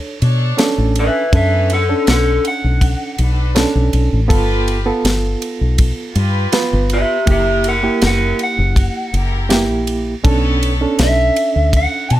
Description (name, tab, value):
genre	straight-eighth soul blues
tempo	81 BPM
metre	4/4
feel	straight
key	B minor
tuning	A4 = 440 Hz
part	reed electric piano	accompaniment	0.0-12.1 s	A#3 to C#5	-20 LUFS	right 3 dB	fast tremolo
part	rich chamber string section	sustained chords	0.2-12.2 s	B3 to C#5	-26 LUFS	left 2 dB	none
part	fingered electric bass	bass	0.2-12.2 s	F#1 to B2	-16 LUFS	equal	none
part	tight funk drum kit	drums	0.2-12.2 s	kick drum, ride cymbal, snare drum	-20 LUFS	equal	none
part	electric guitar through a small old amp	melody	1.0-12.2 s	G4 to A5	-17 LUFS	equal	spring reverb
room	light reverb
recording	none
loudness	-13 LUFS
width	side -14 dB against mid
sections	0.0-12.2 A section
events	clean electric guitar solo 0.0-12.2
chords	0.0 Bm9; 4.3 G7; 7.3 F#7b9; 10.2 Bm9